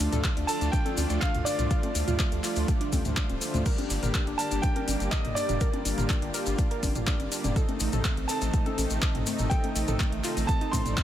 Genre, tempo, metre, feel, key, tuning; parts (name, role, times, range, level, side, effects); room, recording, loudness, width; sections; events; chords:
progressive house; 123 BPM; 4/4; straight; G minor; A4 = 440 Hz
supersaw pad; sustained chords; 0.0-11.0 s; C3 to G4; -36 LUFS; right 1 dB; sidechain pumping
soft round pluck; arpeggios; 0.0-11.0 s; A3 to Bb4; -35 LUFS; right 1 dB; chorus, cassette tape, sidechain pumping, digital delay
soft supersaw; stabs; 0.0-11.0 s; A3 to A5; -35 LUFS; left 1 dB; sidechain pumping, digital delay
saturated sub bass; bass; 0.0-10.9 s; D1 to A2; -30 LUFS; equal; sidechain pumping
deep house drum kit; drums; 0.0-11.0 s; crash cymbal, handclaps, hi-hat; -35 LUFS; equal; small room ambience
maracas; percussion; 0.0-11.0 s; -37 LUFS; left 5 dB
electronic toms and congas; percussion; 0.1-11.0 s; -34 LUFS; left 2 dB; sidechain pumping on perc, small room ambience, sidechain pumping on toms
electronic kick drum; drums; 0.2-11.0 s; -27 LUFS; equal; small room ambience
clear baby grand piano; melody; 0.5-11.0 s; D5 to C6; -35 LUFS; right 2 dB; digital delay
soft synth bell; second line; 0.5-11.0 s; D5 to C6; -42 LUFS; left 1 dB
little or no reverb; -25 LUFS; side -11 dB against mid
0.0-11.0 A section
0.0 Dm; 3.7 Gm; 7.6 Adim